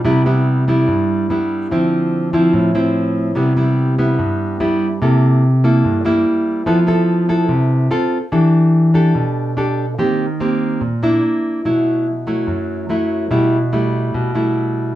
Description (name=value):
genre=bossa nova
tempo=145 BPM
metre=4/4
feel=straight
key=C major, G major from 8.3 s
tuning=A4 = 440 Hz
part: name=nylon-string guitar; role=solo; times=0.0-14.9 s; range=F#2 to A4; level=-14 LUFS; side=equal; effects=none
room=moderate studio reverb, RT60 0.7 s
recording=small room ambience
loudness=-14 LUFS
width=side -13 dB against mid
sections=0.0-8.3 A section; 8.3-15.0 B section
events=none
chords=0.1 Cmaj7; 1.7 Dm9; 3.4 Cmaj7; 5.0 C6; 6.3 Gm6; 6.7 Fmaj7#11; 7.9 F/C; 8.3 Em7; 10.0 Eb6; 11.2 Bb; 11.6 B7sus4; 13.3 G69/B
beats=| 0.05 0.47 0.88 1.29 | 1.70 2.12 2.53 2.94 | 3.36 3.77 4.18 4.60 | 5.01 5.42 5.84 6.25 | 6.66 7.08 7.49 7.91 | 8.32 8.73 9.15 9.56 | 9.98 10.39 10.81 11.22 | 11.64 12.05 12.47 12.89 | 13.30 13.72 14.13 14.55